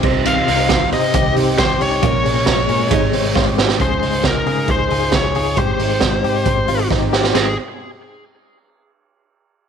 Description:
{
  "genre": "jangly indie pop",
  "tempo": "135 BPM",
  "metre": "4/4",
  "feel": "straight",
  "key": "Ab major",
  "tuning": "A4 = 440 Hz",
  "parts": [
    { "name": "picked steel-string acoustic guitar", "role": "accompaniment", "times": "0.0-7.5 s", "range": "Bb2 to Ab4", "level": "-25 LUFS", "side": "right 11 dB", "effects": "none" },
    { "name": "warm upright piano", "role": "accompaniment", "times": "0.0-7.5 s", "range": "C4 to Eb5", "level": "-28 LUFS", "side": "right 12 dB", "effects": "none" },
    { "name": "phased string machine", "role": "sustained chords", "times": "0.0-3.8 s", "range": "Ab3 to C6", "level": "-28 LUFS", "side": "equal", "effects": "ensemble chorus, phaser" },
    { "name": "direct-recorded clean electric guitar", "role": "arpeggios", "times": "0.0-7.5 s", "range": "Bb2 to Ab4", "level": "-22 LUFS", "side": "left 14 dB", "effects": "tremolo" },
    { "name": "vintage muted picked electric bass", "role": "bass", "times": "0.0-7.6 s", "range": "Ab1 to Db3", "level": "-23 LUFS", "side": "left 1 dB", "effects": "none" },
    { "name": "raw garage drum kit", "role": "drums", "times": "0.0-7.5 s", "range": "crash cymbal, hi-hat, kick drum, ride cymbal, snare drum", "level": "-18 LUFS", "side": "right 4 dB", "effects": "none" },
    { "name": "smooth overdriven lead guitar", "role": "melody", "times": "0.3-7.6 s", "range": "Ab4 to F5", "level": "-20 LUFS", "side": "left 1 dB", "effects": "tape echo" }
  ],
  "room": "light reverb, small room ambience",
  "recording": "1960s-style stereo with parts hard left and right",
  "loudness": "-14 LUFS",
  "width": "side -7 dB against mid",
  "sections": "0.0-3.8 A section; 3.8-7.4 B section; 7.4-9.1 C section",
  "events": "drum fill 3.4-3.8, 6.9-7.4",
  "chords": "0.0 Cm; 2.0 Bbm7; 2.9 Abmaj7; 3.8 Dbadd9; 5.6 Abmaj7"
}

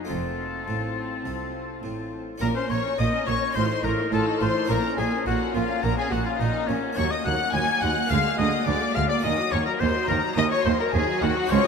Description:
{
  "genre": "classical, baroque-style concerto movement with solo episodes",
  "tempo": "105 BPM",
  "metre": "4/4",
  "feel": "straight",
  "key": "Bb minor",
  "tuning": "A4 = 438 Hz",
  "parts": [
    { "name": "rich chamber violin section", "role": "melody", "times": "0.0-11.7 s", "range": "Db5 to Ab6", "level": "-32 LUFS", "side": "left 7 dB", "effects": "none" },
    { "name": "rich chamber violin section", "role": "second line", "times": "0.0-11.7 s", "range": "Db4 to Ab5", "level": "-28 LUFS", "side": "left 4 dB", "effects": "none" },
    { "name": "harpsichord", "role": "accompaniment", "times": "0.0-11.7 s", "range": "Db2 to Ab4", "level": "-32 LUFS", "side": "equal", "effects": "none" },
    { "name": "rich chamber viola section", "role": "accompaniment", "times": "0.0-11.7 s", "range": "Eb3 to F4", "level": "-31 LUFS", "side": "left 2 dB", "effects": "none" },
    { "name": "rich chamber cello section", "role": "bass", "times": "0.0-11.6 s", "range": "Db2 to C3", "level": "-28 LUFS", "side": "right 6 dB", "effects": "none" },
    { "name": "rich chamber double bass section", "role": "bass", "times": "0.0-11.6 s", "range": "F1 to Eb2", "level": "-30 LUFS", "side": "right 4 dB", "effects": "none" },
    { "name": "clear oboe", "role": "melody", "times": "0.1-11.7 s", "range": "Db4 to Ab5", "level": "-29 LUFS", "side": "left 2 dB", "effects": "none" }
  ],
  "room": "wet cathedral reverb, RT60 6.9 s",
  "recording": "in a vast, echoing space",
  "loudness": "-22 LUFS",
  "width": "side -6 dB against mid",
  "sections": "0.0-2.4 A section; 2.4-11.7 B section",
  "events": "none",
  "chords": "0.1 F; 2.4 Bbm; 3.6 F7/A; 4.7 Bbm; 7.0 Ebm; 8.1 Bb7/D; 9.2 Ebm"
}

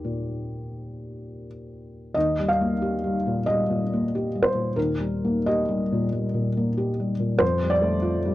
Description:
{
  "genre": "neoclassical minimalist piano",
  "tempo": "82-95 BPM",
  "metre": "4/4",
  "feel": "rubato",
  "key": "unclear",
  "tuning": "A4 = 438 Hz",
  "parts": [
    { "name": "felt-muted upright piano", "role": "solo", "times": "0.0-8.3 s", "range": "Eb2 to F5", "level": "-22 LUFS", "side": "equal", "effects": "none" }
  ],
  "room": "little or no reverb",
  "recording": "dry, close 1970s-style studio recording",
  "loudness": "-22 LUFS",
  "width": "side -15 dB against mid",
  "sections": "0.0-2.1 A section; 2.1-8.3 B section",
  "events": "none",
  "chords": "0.0 Eb; 7.4 Fadd9"
}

